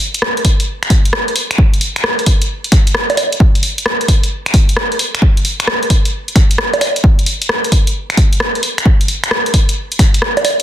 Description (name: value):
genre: UK garage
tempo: 132 BPM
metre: 4/4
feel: swing 67% on 16ths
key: none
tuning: none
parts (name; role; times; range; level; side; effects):
- punchy analog drum machine; drums; 0.1-10.6 s; bongos, finger snaps, hi-hat, rim click; -15 LUFS; equal; soft clipping on snare
- electronic kick drum; drums; 0.4-10.1 s; none; -11 LUFS; equal; none
room: little or no reverb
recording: dense, heavily limited modern master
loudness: -11 LUFS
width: side -12 dB against mid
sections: 0.0-10.6 A section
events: none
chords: none